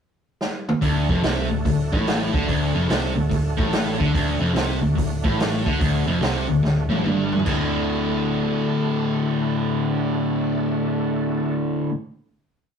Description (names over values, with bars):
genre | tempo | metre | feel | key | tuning
blues rock power trio and southern rock | 144 BPM | 4/4 | swing 65% on 8ths | D mixolydian | A4 = 439 Hz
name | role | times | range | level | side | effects
vintage drum kit | drums | 0.4-7.6 s | crash cymbal, hi-hat, kick drum, snare drum, toms | -25 LUFS | right 1 dB | none
overdriven tonewheel organ | sustained chords | 0.8-11.6 s | A3 to A4 | -32 LUFS | right 5 dB | slow rotary speaker, chorus vibrato
distorted electric guitar | riff | 0.8-11.9 s | D2 to D3 | -21 LUFS | left 1 dB | distortion
vintage muted picked electric bass | bass | 0.8-11.9 s | D1 to D2 | -27 LUFS | equal | none
room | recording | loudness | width
wet studio reverb, RT60 0.7 s | rough rehearsal-room recording, tube saturation | -20 LUFS | side -7 dB against mid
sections
0.0-0.8 pickup bar; 0.8-7.5 riff; 7.5-10.8 final chord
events
drum fill 0.4-0.8, 6.6-7.5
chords
0.0 N.C.; 0.8 D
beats
0.40 | 0.81 1.23 1.65 2.06 | 2.48 2.90 3.31 3.73 | 4.14 4.55 4.97 5.38 | 5.80 6.21 6.63 7.04 | 7.46 7.87 8.29 8.71 | 9.12 9.54 9.96 10.37